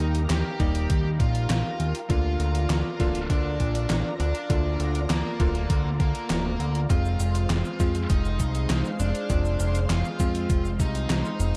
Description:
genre	synthwave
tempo	100 BPM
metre	4/4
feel	straight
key	unclear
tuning	A4 = 440 Hz
part	high-gain lead guitar	melody	0.0-11.6 s	Bb3 to G4	-35 LUFS	equal	distortion, tape echo
part	analog string pad	sustained chords	0.0-11.6 s	Ab3 to C6	-38 LUFS	equal	ensemble chorus, sidechain pumping
part	bright electric grand piano	stabs	0.0-11.6 s	D3 to F4	-36 LUFS	equal	none
part	fat analog bass	bass	0.0-11.5 s	D1 to F2	-28 LUFS	equal	none
part	gated 80s digital drum machine	drums	0.0-11.5 s	handclaps, hi-hat, shaker, snare drum	-33 LUFS	equal	gated reverb, gated reverb snare, overdrive
part	electronic kick drum	drums	0.6-10.9 s	none	-27 LUFS	equal	overdrive
room	little or no reverb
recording	dark, warm production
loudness	-25 LUFS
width	mono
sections	0.0-11.6 A section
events	none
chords	0.0 Eb; 2.1 Bb/D; 6.9 Fm

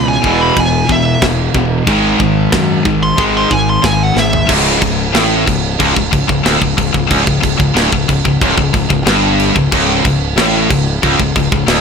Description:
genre	heavy metal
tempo	92 BPM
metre	4/4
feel	straight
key	unclear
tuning	A4 = 441 Hz
part	high-gain lead guitar	melody	0.0-4.5 s	E5 to B#5	-17 LUFS	right 2 dB	distortion, ping-pong delay
part	distorted electric guitar	riff	0.0-11.8 s	C#2 to G#3	-18 LUFS	right 13 dB	overdrive
part	fuzz guitar	riff	0.0-4.5 s	E2 to G#3	-19 LUFS	right 1 dB	distortion
part	heavy high-gain guitar	riff	0.0-11.8 s	C#2 to G#3	-15 LUFS	left 12 dB	distortion
part	fuzz fingered electric bass	bass	0.0-11.8 s	C#1 to F#2	-18 LUFS	equal	overdrive
part	tight metal drum kit	drums	0.2-11.8 s	crash cymbal, kick drum, snare drum, toms	-16 LUFS	right 1 dB	none
room	light reverb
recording	none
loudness	-10 LUFS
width	side -6 dB against mid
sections	0.0-4.5 A section; 4.5-11.8 B section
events	lead electric guitar solo 0.0-4.5; drum fill 4.2-4.5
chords	0.0 E5; 1.9 G#5; 4.5 C#5

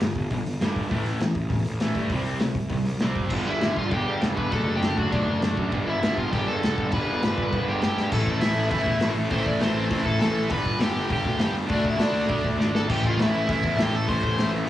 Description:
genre	punk rock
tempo	200 BPM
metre	4/4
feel	straight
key	A minor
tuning	A4 = 440 Hz
part	distorted electric guitar	riff	0.0-14.7 s	G2 to D4	-27 LUFS	equal	distortion, cassette tape
part	fuzz picked electric bass	bass	0.0-14.7 s	E1 to G2	-28 LUFS	equal	overdrive
part	loose indie drum kit	drums	0.0-14.5 s	crash cymbal, hi-hat, kick drum, snare drum	-28 LUFS	equal	cassette tape
part	high-gain distorted guitar	riff	3.3-14.7 s	G2 to D4	-34 LUFS	right 2 dB	none
part	smooth overdriven lead guitar	melody	3.5-14.5 s	C4 to C6	-28 LUFS	equal	cassette tape
room	little or no reverb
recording	home recording on cassette, small room reverb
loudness	-22 LUFS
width	side -13 dB against mid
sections	0.0-3.3 A section; 3.3-8.1 B section; 8.1-14.7 C section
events	drum fill 8.0, 12.6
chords	0.0 G5; 0.9 A5; 2.1 C5; 3.3 G; 4.5 D/F#; 5.7 G; 8.1 Am; 10.5 G; 11.7 D5; 12.9 Am

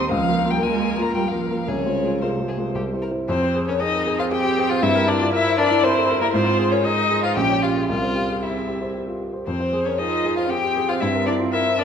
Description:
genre	quick classical-period movement for piano quartet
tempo	116 BPM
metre	3/4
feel	rubato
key	F minor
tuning	A4 = 440 Hz
part	muted violin	melody	0.0-11.8 s	Bb4 to C6	-23 LUFS	left 5 dB	none
part	muted cello	second line	0.0-11.8 s	C3 to F4	-26 LUFS	right 8 dB	none
part	muted violin	second line	0.0-11.8 s	Bb3 to Bb4	-26 LUFS	left 2 dB	none
part	dark baby grand piano	accompaniment	0.0-11.8 s	Bb1 to Db5	-23 LUFS	equal	none
room	wet recital hall reverb, RT60 1.8 s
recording	none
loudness	-18 LUFS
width	side -7 dB against mid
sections	0.0-3.3 A section; 3.3-11.8 B section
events	none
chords	0.1 Bb5; 1.7 Fm/C; 2.8 C; 3.3 Fm; 4.8 Edim/G; 6.3 Fm/Ab; 7.4 Gm7b5/Bb; 7.9 C; 9.5 Fm; 11.0 Edim/G

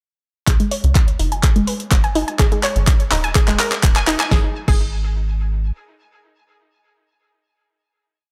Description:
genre	progressive house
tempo	125 BPM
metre	4/4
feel	straight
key	unclear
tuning	A4 = 440 Hz
part	glassy wavetable pluck	arpeggios	0.5-4.8 s	G#3 to G#5	-24 LUFS	equal	chorus, sidechain pumping, delay
part	tight sequencer bass	bass	0.5-5.7 s	D#1 to C#2	-23 LUFS	equal	sidechain pumping
part	deep house drum kit	drums	0.5-4.8 s	crash cymbal, handclaps, hi-hat, snare drum	-24 LUFS	equal	none
part	electronic kick drum	drums	0.5-4.8 s	none	-18 LUFS	equal	none
room	light reverb, digital ambience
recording	none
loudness	-17 LUFS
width	mono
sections	0.5-4.3 build; 4.3-8.2 final note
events	build-up 0.5-4.3; drum fill 0.5-4.3; filter sweep on synth arpeggio sound 0.5-4.3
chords	0.5 C#5; 1.4 F#sus2; 2.4 G#5; 3.4 D#5; 4.3 N.C.

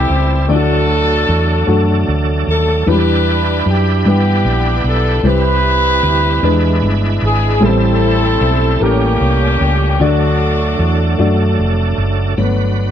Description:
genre	slow gospel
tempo	50 BPM (dotted quarters)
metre	6/8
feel	straight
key	unclear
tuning	A4 = 443 Hz
part	warm horn section	melody	0.0-11.6 s	A3 to B4	-17 LUFS	equal	none
part	dark baby grand piano	accompaniment	0.0-12.9 s	A2 to D5	-18 LUFS	left 2 dB	none
part	bright tonewheel organ	sustained chords	0.0-12.9 s	F#3 to B4	-21 LUFS	right 4 dB	slow rotary speaker, overdrive, chorus vibrato
part	hollow-body short-scale fingered electric bass	bass	0.0-12.9 s	F1 to G2	-15 LUFS	equal	none
room	light reverb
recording	dark, warm production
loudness	-11 LUFS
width	side -9 dB against mid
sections	0.0-12.4 A section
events	none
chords	0.0 Am7; 0.5 D; 2.9 Em7; 5.3 Cmaj7; 6.4 E7; 7.6 Am7; 8.8 A7b9; 10.0 D; 12.4 Gmaj7

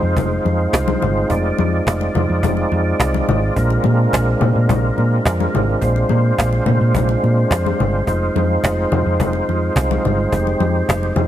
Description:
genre	disco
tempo	106 BPM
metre	4/4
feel	straight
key	F dorian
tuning	A4 = 440 Hz
part	percussive tonewheel organ	sustained chords	0.0-11.3 s	Ab3 to D5	-20 LUFS	right 1 dB	overdrive, chorus vibrato, slow rotary speaker
part	hollow-body short-scale fingered electric bass	bass	0.0-11.3 s	F1 to Bb2	-18 LUFS	equal	none
part	cajon	drums	0.0-11.1 s	none	-20 LUFS	right 1 dB	none
part	congas	percussion	0.2-11.3 s	none	-23 LUFS	left 5 dB	none
room	little or no reverb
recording	none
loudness	-15 LUFS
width	side -12 dB against mid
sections	0.0-11.3 A section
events	none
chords	0.0 Fm7; 3.6 Bb9; 8.1 Fm7

